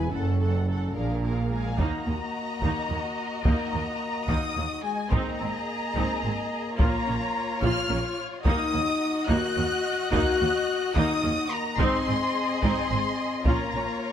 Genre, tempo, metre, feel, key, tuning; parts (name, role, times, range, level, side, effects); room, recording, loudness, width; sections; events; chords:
cinematic, epic orchestral film score; 72 BPM (dotted quarters); 6/8; straight; Eb dorian; A4 = 440 Hz
warm symphonic violin section; melody; 0.0-14.1 s; E#5 to Gb6; -31 LUFS; left 2 dB
warm symphonic violin section; second line; 0.0-14.1 s; F4 to Eb5; -34 LUFS; left 2 dB
warm symphonic viola section; accompaniment; 0.0-13.8 s; Bb3 to A4; -32 LUFS; right 1 dB
mellow French horn section; sustained chords; 0.0-14.1 s; G#3 to Gb4; -31 LUFS; left 4 dB
rich symphonic cello section; bass; 0.0-13.8 s; Eb2 to A#2; -31 LUFS; right 3 dB
rich symphonic double bass section; bass; 0.0-13.8 s; F#1 to Eb2; -32 LUFS; right 3 dB
taiko ensemble; drums; 1.8-14.0 s; -27 LUFS; equal
light reverb; close, detailed microphones; -24 LUFS; side -9 dB against mid
0.0-1.8 A section; 1.8-14.1 B section
0.1 F#m; 1.0 A#7; 1.8 Ebm; 5.1 Ab; 6.8 Bbm; 8.5 Ebm; 11.8 Ab; 13.5 Bbm